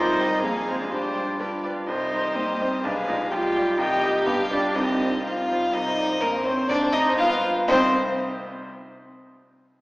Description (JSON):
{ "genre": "quick classical-period movement for piano quintet", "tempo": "124 BPM", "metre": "2/4", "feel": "straight", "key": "C minor", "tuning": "A4 = 440 Hz", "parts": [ { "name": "rich violin", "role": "melody", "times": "0.0-8.0 s", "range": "Bb4 to G5", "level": "-27 LUFS", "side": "left 1 dB", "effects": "none" }, { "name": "warm cello", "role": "second line", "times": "0.0-8.0 s", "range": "Bb3 to F4", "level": "-26 LUFS", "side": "right 1 dB", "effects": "none" }, { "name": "warm violin", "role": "second line", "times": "0.0-8.0 s", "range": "Bb3 to Bb4", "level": "-29 LUFS", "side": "equal", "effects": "none" }, { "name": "bright baby grand piano", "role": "accompaniment", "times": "0.0-8.7 s", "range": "Bb1 to Eb5", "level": "-28 LUFS", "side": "equal", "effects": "none" }, { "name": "warm viola", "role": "accompaniment", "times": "0.0-8.0 s", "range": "B3 to Eb5", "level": "-30 LUFS", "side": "equal", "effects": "none" } ], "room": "wet concert hall reverb, RT60 2.4 s", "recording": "heard from further back in the room, small speaker sound", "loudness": "-21 LUFS", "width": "side -22 dB against mid", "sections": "0.0-5.7 A section; 5.7-7.7 B section", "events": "none", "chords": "0.4 Fm; 0.9 Gsus4; 1.4 G; 1.9 Cm; 2.8 Bdim7; 3.3 G7/B; 3.8 Cm; 4.3 G7(no3); 4.7 Cm; 6.2 Bbmadd9; 6.7 Cmadd9; 7.2 G7; 7.7 Cm" }